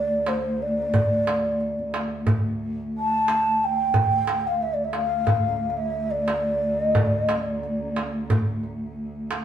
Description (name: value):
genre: Turkish makam ensemble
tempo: 180 BPM (eighths)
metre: 9/8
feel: straight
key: D makam huseyni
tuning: A4 = 440 Hz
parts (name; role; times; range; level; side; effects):
- breathy mellow low ney; melody; 0.0-8.1 s; C5 to A5; -23 LUFS; equal; none
- dark cello; drone; 0.0-9.4 s; D2; -29 LUFS; equal; none
- darbuka; percussion; 0.3-9.4 s; none; -24 LUFS; right 1 dB; none
room: wet stone room reverb, RT60 0.9 s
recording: band playing live in one room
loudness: -21 LUFS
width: side -10 dB against mid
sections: 0.0-9.4 A section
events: none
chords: none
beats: 0.28 0.61 | 0.94 1.28 1.61 1.95 2.28 2.61 2.95 3.28 3.62 | 3.95 4.29 4.62 4.95 5.29 5.62 5.96 6.29 6.62 | 6.96 7.29 7.63 7.96 8.30 8.63 8.97 9.30